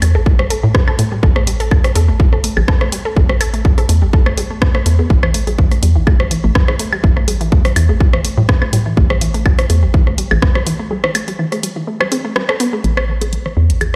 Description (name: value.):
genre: minimal techno.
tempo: 124 BPM.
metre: 4/4.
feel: swing 54% on 16ths.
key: unclear.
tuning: A4 = 440 Hz.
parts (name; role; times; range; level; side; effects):
resonant blip pluck; riff; 0.0-13.8 s; E3 to A4; -25 LUFS; equal; chorus, sidechain pumping, delay.
hollow knocking FM bass; bass; 0.0-14.0 s; A1 to A2; -17 LUFS; equal; sidechain pumping.
house drum kit; drums; 0.0-13.9 s; hi-hat, rim click; -24 LUFS; equal; overdrive.
electronic woodblock, bongos and rim click; percussion; 0.0-13.9 s; none; -23 LUFS; equal; digital delay.
electronic kick drum; drums; 0.3-10.5 s; none; -15 LUFS; equal; overdrive.
room: little or no reverb.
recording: played on a big sound system in a bare room, large studio reverb.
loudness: -14 LUFS.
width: mono.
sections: 0.0-12.8 A section; 12.8-14.0 B section.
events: break 10.9-12.8; filter sweep on synth arpeggio sound 12.8-14.0.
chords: 0.0 A5.